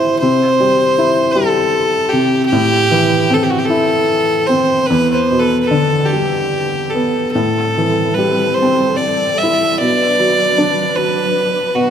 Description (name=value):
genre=celtic folk, Celtic slow air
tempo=48-53 BPM (dotted quarters)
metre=6/8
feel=rubato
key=A dorian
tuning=A4 = 440 Hz
part: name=clear fiddle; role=melody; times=0.0-11.9 s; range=F#4 to E5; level=-15 LUFS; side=equal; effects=none
part: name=felt-muted upright piano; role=accompaniment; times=0.0-11.9 s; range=E2 to E4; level=-16 LUFS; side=left 1 dB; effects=none
part: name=warm symphonic string section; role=sustained chords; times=7.4-11.9 s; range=F#3 to B4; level=-22 LUFS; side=equal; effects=none
room=moderate church reverb, RT60 3.0 s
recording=none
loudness=-12 LUFS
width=side -8 dB against mid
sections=0.0-11.9 A section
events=none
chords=0.2 C6; 2.5 Am7; 4.9 Em7; 7.4 Am7; 9.8 Bm